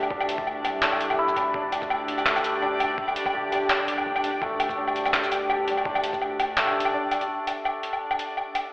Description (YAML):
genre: half-time drum and bass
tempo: 167 BPM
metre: 4/4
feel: swing 54% on 16ths, half-time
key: unclear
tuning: A4 = 440 Hz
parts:
  - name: dark analog pad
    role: sustained chords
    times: 0.0-8.7 s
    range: D4 to G5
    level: -30 LUFS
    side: equal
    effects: chorus, sidechain pumping
  - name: santur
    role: arpeggios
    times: 0.0-8.7 s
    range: A3 to D5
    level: -28 LUFS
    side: equal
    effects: dub echo
  - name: long sustained 808-style bass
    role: bass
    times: 0.0-6.9 s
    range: E1 to D2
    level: -42 LUFS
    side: equal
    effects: none
  - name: boom bap sampler-style drum kit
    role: drums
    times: 0.0-8.6 s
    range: handclaps, hi-hat, shaker, woodblock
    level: -26 LUFS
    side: equal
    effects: overdrive
  - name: backwards swelling texture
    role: texture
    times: 0.0-8.7 s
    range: D4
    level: -34 LUFS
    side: right 1 dB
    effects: built-in reverb
  - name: electronic kick drum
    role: drums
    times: 0.1-6.2 s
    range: none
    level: -37 LUFS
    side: equal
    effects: none
room: moderate digital room reverb, RT60 1.1 s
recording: played on a big sound system in a bare room, large studio reverb, telephone sound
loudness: -22 LUFS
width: side -22 dB against mid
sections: 0.0-7.3 A section; 7.3-8.7 B section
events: drop 0.0-7.3; break 6.9-7.3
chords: 0.0 D5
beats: | 0.11 0.47 0.83 1.19 | 1.54 1.90 2.26 2.62 | 2.98 3.34 3.70 4.06 | 4.42 4.78 5.14 5.50 | 5.86 6.21 6.57 6.93 | 7.29 7.65 8.01 8.37